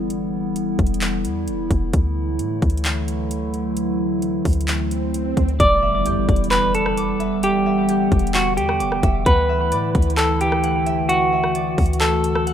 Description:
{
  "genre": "hip hop, atmospheric cloud-rap",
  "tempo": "131 BPM",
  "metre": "4/4",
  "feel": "half-time",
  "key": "E minor",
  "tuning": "A4 = 440 Hz",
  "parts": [
    { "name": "warbly tape-like pad", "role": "sustained chords", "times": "0.0-12.5 s", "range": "D3 to F#5", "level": "-23 LUFS", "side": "equal", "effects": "chorus, built-in reverb, sidechain pumping" },
    { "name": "warm 808-style bass", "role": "bass", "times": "0.0-12.5 s", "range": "E1 to A2", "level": "-24 LUFS", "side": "equal", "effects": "none" },
    { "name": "trap drum kit", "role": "drums", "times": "0.1-12.5 s", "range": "handclaps, hi-hat, kick drum, rim click", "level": "-21 LUFS", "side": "equal", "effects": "none" },
    { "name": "swell and impact", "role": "sound effects", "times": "4.3-7.4 s", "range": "none", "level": "-30 LUFS", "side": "right 1 dB", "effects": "none" },
    { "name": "semi-hollow electric guitar", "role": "melody", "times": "5.6-12.4 s", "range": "F#4 to D5", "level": "-20 LUFS", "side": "right 1 dB", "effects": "spring reverb, digital delay" },
    { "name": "concert harp", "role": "arpeggios", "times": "5.6-12.5 s", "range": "G4 to D6", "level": "-31 LUFS", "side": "left 4 dB", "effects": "digital delay" }
  ],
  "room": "light reverb, digital ambience",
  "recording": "rough home demo mix",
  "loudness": "-17 LUFS",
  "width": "side -9 dB against mid",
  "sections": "0.0-5.6 A section; 5.6-12.5 B section",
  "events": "swell 4.3-5.6; impact 5.6-7.4",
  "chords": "0.0 Em7; 1.9 Dadd9; 5.6 Em7; 9.3 Dadd9"
}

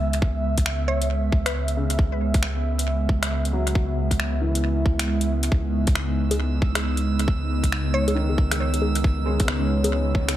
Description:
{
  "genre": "future garage",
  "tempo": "136 BPM",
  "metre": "4/4",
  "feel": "swing 62% on 16ths",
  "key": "C# minor",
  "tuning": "A4 = 440 Hz",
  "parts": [
    { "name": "felt-muted upright piano", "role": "accompaniment", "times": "0.0-10.4 s", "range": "C#3 to C#4", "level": "-32 LUFS", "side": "left 2 dB", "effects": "sidechain pumping, dub echo" },
    { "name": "airy breathy pad", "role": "sustained chords", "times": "0.0-10.4 s", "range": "C#3 to E5", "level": "-27 LUFS", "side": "right 2 dB", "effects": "chorus, sidechain pumping" },
    { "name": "warm sub bass", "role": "bass", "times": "0.0-10.4 s", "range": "C#2", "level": "-24 LUFS", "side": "equal", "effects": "sidechain pumping" },
    { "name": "garage drum kit", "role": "drums", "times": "0.1-10.4 s", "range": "bongos, finger snaps, hi-hat", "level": "-28 LUFS", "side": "left 1 dB", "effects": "studio reverb, tape echo" },
    { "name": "electronic kick drum", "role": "drums", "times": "0.2-10.3 s", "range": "none", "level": "-21 LUFS", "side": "equal", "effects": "studio reverb" },
    { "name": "mallet-like synth pluck", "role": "melody", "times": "0.9-1.8, 7.9-8.2 s", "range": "B4 to C#5", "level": "-30 LUFS", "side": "left 1 dB", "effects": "chorus, tape echo" },
    { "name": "drifting glass-harmonics texture", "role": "texture", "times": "6.0-10.4 s", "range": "E6", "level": "-35 LUFS", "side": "right 7 dB", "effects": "chorus, built-in reverb" },
    { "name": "riser", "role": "sound effects", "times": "10.1-10.4 s", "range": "none", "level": "-45 LUFS", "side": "left 1 dB", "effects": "none" }
  ],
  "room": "light reverb, digital ambience",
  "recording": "echo-heavy mix",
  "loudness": "-20 LUFS",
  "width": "side -13 dB against mid",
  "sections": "0.0-10.4 A section",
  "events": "none",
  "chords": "0.0 C#m7"
}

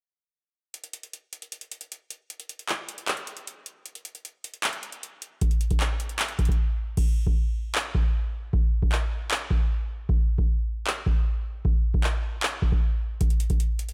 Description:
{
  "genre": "hip hop",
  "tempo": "154 BPM",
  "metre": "4/4",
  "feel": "half-time",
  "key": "none",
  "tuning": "none",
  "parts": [
    { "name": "booming analog drum machine", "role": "drums", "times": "0.7-13.9 s", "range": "crash cymbal, handclaps, hi-hat, kick drum", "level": "-27 LUFS", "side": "equal", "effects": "none" }
  ],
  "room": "little or no reverb",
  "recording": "none",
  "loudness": "-26 LUFS",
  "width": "mono",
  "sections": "0.7-7.0 A section; 7.0-13.9 B section",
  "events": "break 6.6-7.0; hi-hats muted 7.0-13.2",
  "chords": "none"
}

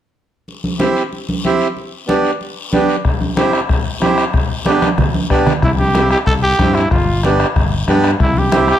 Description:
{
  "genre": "latin, cumbia",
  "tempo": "186 BPM",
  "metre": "4/4",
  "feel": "straight",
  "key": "C major",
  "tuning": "A4 = 440 Hz",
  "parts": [
    { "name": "congas", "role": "percussion", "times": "0.5-8.7 s", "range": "none", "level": "-20 LUFS", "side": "right 1 dB", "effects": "none" },
    { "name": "guiro", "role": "percussion", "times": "0.5-8.8 s", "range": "none", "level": "-30 LUFS", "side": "left 6 dB", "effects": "none" },
    { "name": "accordion", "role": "accompaniment", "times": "0.8-8.8 s", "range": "B3 to G4", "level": "-17 LUFS", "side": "right 2 dB", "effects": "none" },
    { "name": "bombo", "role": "percussion", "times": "3.0-8.8 s", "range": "none", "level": "-18 LUFS", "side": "left 2 dB", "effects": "none" },
    { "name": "growling trumpet", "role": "melody", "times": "5.6-8.8 s", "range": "E4 to A4", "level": "-16 LUFS", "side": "equal", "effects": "none" },
    { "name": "fingered electric bass", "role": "bass", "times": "5.6-8.7 s", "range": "G1 to G2", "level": "-17 LUFS", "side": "equal", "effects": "none" }
  ],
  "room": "moderate large studio reverb, RT60 1.1 s",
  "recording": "none",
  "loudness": "-13 LUFS",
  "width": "side -11 dB against mid",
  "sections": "0.5-5.6 A section; 5.6-8.8 B section",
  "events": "drum fill 4.8-5.6",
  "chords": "0.5 C; 1.8 G; 3.1 C; 4.3 G; 5.6 C; 6.9 G7; 8.2 C"
}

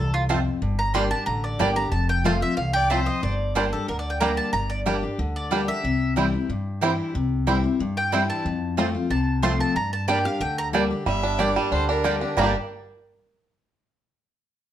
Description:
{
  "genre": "bluegrass",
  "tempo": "184 BPM",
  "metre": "4/4",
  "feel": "straight",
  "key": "G dorian",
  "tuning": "A4 = 440 Hz",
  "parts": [
    { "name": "mandolin", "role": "melody", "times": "0.0-12.5 s", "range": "F4 to C6", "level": "-26 LUFS", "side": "right 1 dB", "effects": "none" },
    { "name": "picked steel-string acoustic guitar", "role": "accompaniment", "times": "0.0-12.5 s", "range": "E2 to G4", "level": "-26 LUFS", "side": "left 4 dB", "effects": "none" },
    { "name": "upright bass", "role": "bass", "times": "0.0-12.5 s", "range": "F1 to G2", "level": "-27 LUFS", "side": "equal", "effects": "none" },
    { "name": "bluegrass banjo", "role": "arpeggios", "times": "0.3-12.6 s", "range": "D3 to G4", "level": "-26 LUFS", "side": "right 4 dB", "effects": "none" },
    { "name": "mandolin", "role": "stabs", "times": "0.3-12.5 s", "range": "Bb3 to A5", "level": "-29 LUFS", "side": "right 5 dB", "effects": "none" },
    { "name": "clear fiddle", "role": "second line", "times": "2.8-3.3, 11.1-12.5 s", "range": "Bb4 to E5", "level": "-30 LUFS", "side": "left 2 dB", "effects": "none" }
  ],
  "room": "moderate studio reverb, RT60 0.8 s",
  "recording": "none",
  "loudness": "-21 LUFS",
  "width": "side -11 dB against mid",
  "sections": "0.0-11.1 A section; 11.1-12.4 B section; 12.4-13.7 C section",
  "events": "none",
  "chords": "0.0 F; 0.6 Gm; 1.9 F; 3.2 Gm; 5.8 C; 8.5 F; 9.8 Gm"
}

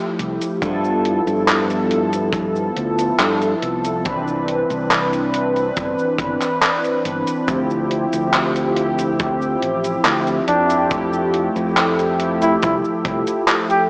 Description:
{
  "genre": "vaporwave",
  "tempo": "70 BPM",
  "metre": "4/4",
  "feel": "straight",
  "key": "C major",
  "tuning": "A4 = 440 Hz",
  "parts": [
    { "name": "mellow synth brass", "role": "accompaniment", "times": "0.0-13.9 s", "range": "E3 to B4", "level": "-19 LUFS", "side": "equal", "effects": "lush chorus, tape echo" },
    { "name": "modern bright fingered electric bass", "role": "bass", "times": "0.2-13.2 s", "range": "G1 to G2", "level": "-25 LUFS", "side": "equal", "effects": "tube saturation" },
    { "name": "gated 80s digital drum machine", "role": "drums", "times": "0.2-13.9 s", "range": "cabasa, handclaps, hi-hat", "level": "-20 LUFS", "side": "equal", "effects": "gated reverb, overdrive, vintage 12-bit sampler grit" },
    { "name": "kick drum", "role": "drums", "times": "0.6-13.2 s", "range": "none", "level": "-26 LUFS", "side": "equal", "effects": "vintage 12-bit sampler grit" },
    { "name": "warbly tape-like pad", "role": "sustained chords", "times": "8.6-13.9 s", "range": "A4 to E6", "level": "-28 LUFS", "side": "equal", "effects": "chorus, built-in reverb" },
    { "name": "warm flugelhorn", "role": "melody", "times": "10.5-13.8 s", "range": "D4 to G4", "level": "-19 LUFS", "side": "equal", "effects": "vintage 12-bit sampler grit, tape echo" }
  ],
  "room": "moderate lush hall reverb, RT60 2.3 s",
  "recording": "cassette tape, small speaker sound",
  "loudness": "-16 LUFS",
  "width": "side -31 dB against mid",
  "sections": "0.0-13.9 A section",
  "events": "none",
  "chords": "0.0 Fmaj9; 0.6 G13; 4.1 Cmaj9; 7.5 Dm11; 10.9 Fmaj9"
}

